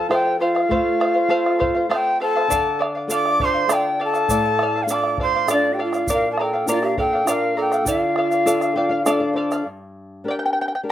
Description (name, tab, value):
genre	andean folk, Andean ensemble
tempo	101 BPM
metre	3/4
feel	straight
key	D minor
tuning	A4 = 435 Hz
part	bright reedy large quena	melody	0.0-9.3 s	D5 to D6	-21 LUFS	left 2 dB	slapback echo
part	breathy bright large pan pipes	second line	0.0-9.3 s	D4 to F5	-24 LUFS	right 5 dB	none
part	charango	accompaniment	0.0-10.9 s	A4 to G5	-24 LUFS	equal	none
part	flamenco guitar	accompaniment	0.0-10.9 s	G2 to G5	-26 LUFS	left 2 dB	none
part	bombo	percussion	0.1-9.7 s	none	-27 LUFS	right 2 dB	slapback echo
part	egg shaker	percussion	2.5-9.6 s	none	-29 LUFS	right 6 dB	none
room	light reverb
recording	recorded outdoors, with no room sound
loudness	-17 LUFS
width	side -11 dB against mid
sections	0.0-9.7 A section; 9.7-10.9 B section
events	nylon-string guitar fill 8.5-9.7; charango solo 9.7-10.9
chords	0.0 F; 2.5 Dm; 6.1 Bb; 7.9 Dm; 9.7 Gm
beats	0.10 | 0.70 1.30 1.90 | 2.50 3.10 3.70 | 4.30 4.89 5.49 | 6.09 6.68 7.28 | 7.87 8.47 9.07 | 9.66 10.26 10.85